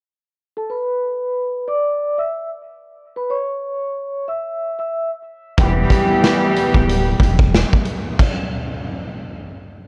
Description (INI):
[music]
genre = hip hop, boom-bap hip-hop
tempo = 92 BPM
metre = 4/4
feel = swing 59% on 16ths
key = E dorian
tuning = A4 = 439 Hz
[part]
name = vibraphone with soft mallets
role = melody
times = 0.6-5.1 s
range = A4 to E6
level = -24 LUFS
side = equal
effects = high-pass filter, low-pass filter
[part]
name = warm studio string section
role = accompaniment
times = 5.6-7.7 s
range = E3 to G4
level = -20 LUFS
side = equal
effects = cassette tape, high-pass filter, low-pass filter
[part]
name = sub bass with octave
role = bass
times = 5.6-7.6 s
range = D1 to E1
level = -21 LUFS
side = equal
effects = none
[part]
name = raw garage drum kit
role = drums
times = 5.6-8.4 s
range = crash cymbal, hi-hat, kick drum, snare drum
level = -20 LUFS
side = equal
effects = vintage 12-bit sampler grit
[sound]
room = light reverb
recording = worn, warbling old tape, cassette tape, warbly pitch drift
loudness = -19 LUFS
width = mono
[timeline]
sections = 0.4-9.9 A section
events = stop 8.2-9.9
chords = 0.4 E5; 3.0 Bsus4 (rootless); 5.6 Em; 8.2 N.C.